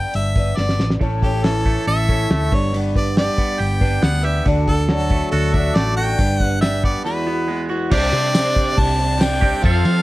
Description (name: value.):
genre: folk rock and heartland rock.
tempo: 139 BPM.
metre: 4/4.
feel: straight.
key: unclear.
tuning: A4 = 440 Hz.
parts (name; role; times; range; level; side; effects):
bright harmonica; melody; 0.0-10.0 s; G4 to A5; -23 LUFS; equal; none.
picked twelve-string acoustic guitar; accompaniment; 0.0-10.0 s; E2 to B4; -25 LUFS; left 2 dB; none.
hollow-body short-scale fingered electric bass; bass; 0.0-10.0 s; G1 to F3; -20 LUFS; equal; none.
cloth-damped thuddy drum kit; drums; 0.1-9.9 s; crash cymbal, hi-hat, kick drum, snare drum; -20 LUFS; equal; none.
twangy electric guitar; riff; 1.0-10.0 s; E2 to A4; -24 LUFS; right 4 dB; none.
tambourine; percussion; 8.3-9.3 s; none; -36 LUFS; left 7 dB; none.
room: little or no reverb.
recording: worn, warbling old tape, cassette tape, warbly pitch drift.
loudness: -16 LUFS.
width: side -17 dB against mid.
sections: 0.0-7.9 A section; 7.9-10.0 B section.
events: drum fill 0.6-1.0; break 7.0-7.9.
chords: 0.0 G; 1.0 A; 2.5 G; 4.5 D; 6.2 G; 7.0 Eadd9; 7.9 Csus2.